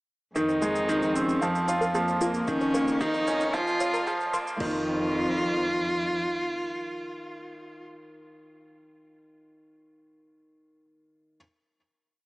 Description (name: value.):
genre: piano and strings electronica.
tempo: 113 BPM.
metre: 4/4.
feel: straight.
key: unclear.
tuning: A4 = 440 Hz.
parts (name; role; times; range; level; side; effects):
rich cello; melody; 0.4-7.8 s; Bb3 to F4; -29 LUFS; equal; low-pass filter.
analog pluck; arpeggios; 0.4-4.9 s; Eb4 to F5; -35 LUFS; left 1 dB; none.
bright baby grand piano; riff; 0.4-11.4 s; Eb3 to F4; -28 LUFS; right 1 dB; none.
rich symphonic cello section; bass; 0.4-6.2 s; F2; -35 LUFS; equal; sidechain pumping.
electronic shaker and crash cymbal; drums; 0.4-4.7 s; none; -44 LUFS; right 1 dB; high-pass filter on perc, small room ambience, high-pass filter on cymbals.
electronic kick drum; drums; 2.5-4.7 s; none; -40 LUFS; equal; overdrive, small room ambience.
room: moderate lush hall reverb, RT60 2.6 s.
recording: high-pass filter, small speaker sound.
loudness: -24 LUFS.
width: side -21 dB against mid.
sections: 0.4-4.6 build; 4.6-8.9 final chord.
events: build-up 0.4-4.6; filter sweep on synth arpeggio sound 0.4-4.6; filter sweep on cello 0.4-4.6; filter sweep 0.4-4.6.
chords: 0.4 Fm7; 1.4 Db6/F (rootless); 2.5 Eb7(no3)/F; 3.5 Bb5/F; 4.6 Ebsus2/F.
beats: | 0.36 0.89 1.42 1.95 | 2.48 3.01 3.54 4.08 | 4.61 5.14 5.67 6.20 | 6.73 7.26 7.79 8.32.